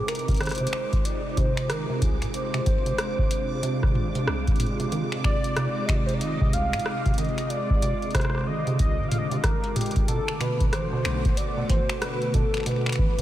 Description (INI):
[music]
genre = IDM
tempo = 93 BPM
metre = 4/4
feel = swing 62% on 16ths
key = unclear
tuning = A4 = 440 Hz
[part]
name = warm velvety synth lead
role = melody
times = 0.0-13.2 s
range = G4 to F5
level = -31 LUFS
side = equal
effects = chorus, vintage 12-bit sampler grit, tape echo
[part]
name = soft string machine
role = sustained chords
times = 0.0-13.2 s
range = B2 to F#4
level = -30 LUFS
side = equal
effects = ensemble chorus, vintage 12-bit sampler grit, sidechain pumping
[part]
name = deep acid bass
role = arpeggios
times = 0.0-13.2 s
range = B1 to E3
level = -30 LUFS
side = right 2 dB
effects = none
[part]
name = bubbling stepped-filter texture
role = texture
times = 0.0-13.2 s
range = D6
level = -40 LUFS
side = right 4 dB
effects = chorus, built-in reverb, sidechain pumping
[part]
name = booming analog drum machine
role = drums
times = 0.1-13.2 s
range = finger snaps, hi-hat, rim click, toms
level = -32 LUFS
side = equal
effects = none
[part]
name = electronic kick drum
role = drums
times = 0.3-13.1 s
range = none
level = -25 LUFS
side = equal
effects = none
[sound]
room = light reverb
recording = none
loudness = -22 LUFS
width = side -13 dB against mid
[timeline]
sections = 0.0-13.2 A section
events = none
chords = 0.0 Ab6; 10.1 Bm7